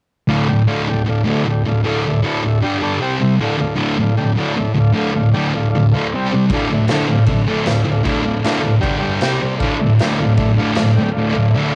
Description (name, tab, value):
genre	garage rock duo or trio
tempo	155 BPM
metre	4/4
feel	straight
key	D minor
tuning	A4 = 438 Hz
part	combo organ	sustained chords	0.3-11.8 s	G4 to A5	-28 LUFS	equal	none
part	thick fuzz guitar	riff	0.3-11.7 s	D2 to C4	-17 LUFS	equal	distortion
part	raw garage drum kit	drums	6.5-10.9 s	crash cymbal, kick drum, snare drum	-25 LUFS	equal	cassette tape
room	light reverb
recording	home recording on cassette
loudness	-17 LUFS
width	mono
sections	0.3-11.8 A section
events	none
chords	0.3 Dm; 2.6 G5; 3.0 C5; 3.4 Dm; 6.1 C5; 6.5 Dm; 8.8 G5; 9.2 C5; 9.6 Dm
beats	| 0.29 0.68 1.07 1.46 | 1.85 2.24 2.63 3.02 | 3.41 3.79 4.18 4.57 | 4.96 5.34 5.73 6.12 | 6.50 6.89 7.28 7.66 | 8.05 8.44 8.82 9.21 | 9.60 9.99 10.38 10.77 | 11.16 11.54